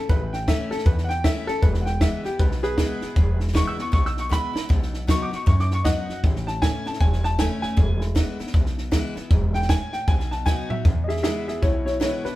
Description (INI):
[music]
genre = rockabilly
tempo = 156 BPM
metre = 4/4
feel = swing 61% on 8ths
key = E major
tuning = A4 = 439 Hz
[part]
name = warm upright piano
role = melody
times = 0.0-12.4 s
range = D4 to E6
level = -27 LUFS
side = left 1 dB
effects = none
[part]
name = picked steel-string acoustic guitar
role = accompaniment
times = 0.0-12.4 s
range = E2 to F#4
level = -32 LUFS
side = left 3 dB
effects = none
[part]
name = upright bass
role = bass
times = 0.1-12.3 s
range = E1 to F#2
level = -25 LUFS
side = equal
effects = none
[part]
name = compact cocktail drum kit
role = drums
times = 0.1-12.3 s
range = hi-hat, kick drum, snare drum, toms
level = -22 LUFS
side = equal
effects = none
[sound]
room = light reverb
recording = band playing live in one room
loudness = -20 LUFS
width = side -16 dB against mid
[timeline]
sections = 0.0-10.9 A section; 10.9-12.4 B section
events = upright piano solo 0.0-10.9; drum fill 4.3-4.7, 10.5-10.9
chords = 0.0 A; 1.6 E; 4.7 B; 6.2 A; 7.8 E; 10.1 B; 10.9 E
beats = | 0.10 0.48 0.86 1.25 | 1.63 2.02 2.40 2.78 | 3.17 3.55 3.94 4.32 | 4.70 5.09 5.47 5.86 | 6.24 6.62 7.01 7.39 | 7.78 8.16 8.55 8.93 | 9.31 9.70 10.08 10.47 | 10.85 11.24 11.62 12.01